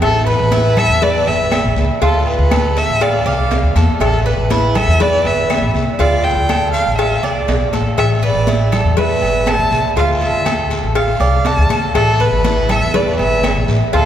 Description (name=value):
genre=latin, Cuban son and guajira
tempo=121 BPM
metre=4/4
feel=straight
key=A minor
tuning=A4 = 437 Hz
part: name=warm violin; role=melody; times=0.0-14.1 s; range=A4 to A5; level=-17 LUFS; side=equal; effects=none
part: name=Cuban tres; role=arpeggios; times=0.0-14.1 s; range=E4 to F5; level=-20 LUFS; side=right 3 dB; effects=none
part: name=upright bass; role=bass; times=0.0-14.1 s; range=G1 to E2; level=-17 LUFS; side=equal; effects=none
part: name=agogo bells and timbales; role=percussion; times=0.0-14.1 s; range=none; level=-25 LUFS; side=right 2 dB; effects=none
part: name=claves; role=percussion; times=0.0-13.7 s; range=none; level=-34 LUFS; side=left 6 dB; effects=none
part: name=congas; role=percussion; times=0.0-14.1 s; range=none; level=-25 LUFS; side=left 2 dB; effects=none
part: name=cowbell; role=percussion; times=0.0-14.1 s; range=none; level=-23 LUFS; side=left 4 dB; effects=none
part: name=guiro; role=percussion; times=0.0-14.1 s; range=none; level=-33 LUFS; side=left 2 dB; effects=none
room=wet cathedral reverb, RT60 6.3 s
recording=recorded in a church or concert hall, faint mains hum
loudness=-12 LUFS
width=side -10 dB against mid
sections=0.0-14.1 A section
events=none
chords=0.0 Asus2; 2.0 Dm; 4.0 Asus2; 6.0 Dm; 8.0 Asus2; 10.0 Dm; 12.0 Asus2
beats=| 0.02 0.52 1.02 1.52 | 2.02 2.52 3.02 3.51 | 4.01 4.51 5.00 5.50 | 6.00 6.50 6.99 7.49 | 7.98 8.48 8.98 9.47 | 9.97 10.46 10.96 11.46 | 11.95 12.45 12.94 13.44 | 13.94